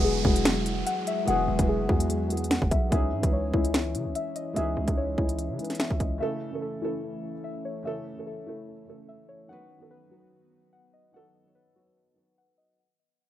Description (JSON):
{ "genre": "hip hop, drill", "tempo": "146 BPM", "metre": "4/4", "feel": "half-time", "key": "unclear", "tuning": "A4 = 440 Hz", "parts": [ { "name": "felt-muted upright piano", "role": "accompaniment", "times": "0.0-12.8 s", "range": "C#3 to E5", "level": "-34 LUFS", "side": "right 1 dB", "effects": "none" }, { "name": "airy breathy pad", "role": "sustained chords", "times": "0.0-12.8 s", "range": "D#3 to E4", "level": "-36 LUFS", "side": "equal", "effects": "chorus" }, { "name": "muted felt-like synth keys", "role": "arpeggios", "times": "0.0-12.8 s", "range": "E4 to F#5", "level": "-31 LUFS", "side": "left 4 dB", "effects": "chorus, ping-pong delay" }, { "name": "hard-hitting 808-style bass", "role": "bass", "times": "0.0-6.2 s", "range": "E1 to C#3", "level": "-30 LUFS", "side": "equal", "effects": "none" }, { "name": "downlifter", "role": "sound effects", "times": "0.0-2.9 s", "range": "none", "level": "-37 LUFS", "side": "right 4 dB", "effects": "none" }, { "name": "drill drum kit", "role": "drums", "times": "0.2-6.1 s", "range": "finger snaps, hi-hat, kick drum, snare drum", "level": "-26 LUFS", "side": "equal", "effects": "none" } ], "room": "moderate studio reverb, RT60 0.5 s", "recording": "rough home demo mix", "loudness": "-25 LUFS", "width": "side -12 dB against mid", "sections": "0.0-12.8 A section", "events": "fade-out 0.0-12.8", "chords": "0.0 Eadd9; 2.9 C#madd9; 6.2 A; 9.5 B" }